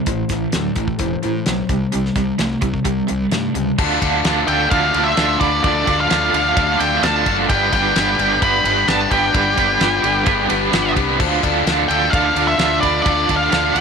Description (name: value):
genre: classic rock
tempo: 129 BPM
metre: 4/4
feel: straight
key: D dorian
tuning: A4 = 443 Hz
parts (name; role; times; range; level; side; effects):
- biting overdriven guitar; riff; 0.0-13.8 s; A2 to B4; -21 LUFS; right 15 dB; tremolo
- cranked stack guitar; riff; 0.0-13.8 s; A2 to B4; -21 LUFS; left 13 dB; overdrive
- clean lap steel guitar; second line; 0.1-2.1, 9.8-11.8 s; F4 to D5; -30 LUFS; left 13 dB; none
- fuzz fingered electric bass; bass; 0.1-13.8 s; E1 to A2; -24 LUFS; equal; overdrive
- damped 70s drum kit; drums; 0.1-13.8 s; crash cymbal, hi-hat, kick drum, ride cymbal, snare drum; -22 LUFS; equal; none
- string machine, cellos; sustained chords; 3.8-13.8 s; D4 to D5; -30 LUFS; left 1 dB; none
- octave-fuzz lead guitar; melody; 4.5-13.8 s; D5 to B5; -18 LUFS; equal; distortion
- octave-fuzz lead guitar; second line; 4.5-13.8 s; A4 to G5; -28 LUFS; right 10 dB; distortion
room: light reverb, small room ambience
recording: 1960s-style stereo with parts hard left and right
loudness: -14 LUFS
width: side -6 dB against mid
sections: 0.0-3.8 A section; 3.8-13.8 B section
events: none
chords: 0.1 Am; 1.7 C5; 3.8 Dm; 7.5 G; 11.2 Dm